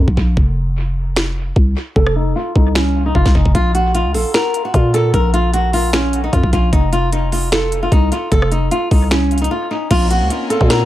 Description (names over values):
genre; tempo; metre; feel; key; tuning
hip hop, trap; 151 BPM; 4/4; half-time; Bb harmonic minor; A4 = 441 Hz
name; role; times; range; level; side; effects
growling 808-style bass; bass; 0.0-10.9 s; F1 to Bb2; -16 LUFS; equal; none
trap drum kit; drums; 0.1-10.8 s; crash cymbal, finger snaps, hi-hat, kick drum, rim click, snare drum; -17 LUFS; equal; dub echo
flamenco guitar; melody; 2.0-10.9 s; Db4 to Bb4; -18 LUFS; equal; low-pass filter, dub echo
warm studio string section; sustained chords; 9.9-10.9 s; Bb3 to Db4; -24 LUFS; left 2 dB; none
room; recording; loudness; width
light reverb, digital ambience; echo-heavy mix; -13 LUFS; side -14 dB against mid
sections
0.0-9.9 A section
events
break 0.0-3.5, 9.5-9.9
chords
0.4 F5; 3.5 Bb5; 6.7 F5; 9.9 Bbmadd9